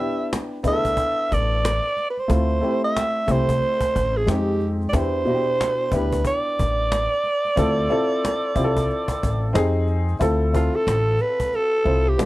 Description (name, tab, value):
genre	hip hop, jazz-hop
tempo	91 BPM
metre	4/4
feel	swing 59% on 16ths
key	D dorian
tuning	A4 = 441 Hz
part	growling alto saxophone	melody	0.0-12.3 s	F4 to E5	-22 LUFS	right 1 dB	none
part	dark upright piano	accompaniment	0.0-12.3 s	B2 to C5	-24 LUFS	left 1 dB	none
part	cajon	drums	0.3-12.3 s	none	-28 LUFS	equal	none
part	upright bass	bass	0.6-12.3 s	A1 to F2	-23 LUFS	equal	none
room	moderate studio reverb, RT60 0.6 s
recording	none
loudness	-19 LUFS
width	side -17 dB against mid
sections	0.0-10.2 A section; 10.2-12.3 B section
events	none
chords	0.0 Em7; 2.3 Dm9; 4.3 Fm7; 4.9 Em7; 7.6 Dm9; 9.5 Fm7; 10.2 Dm9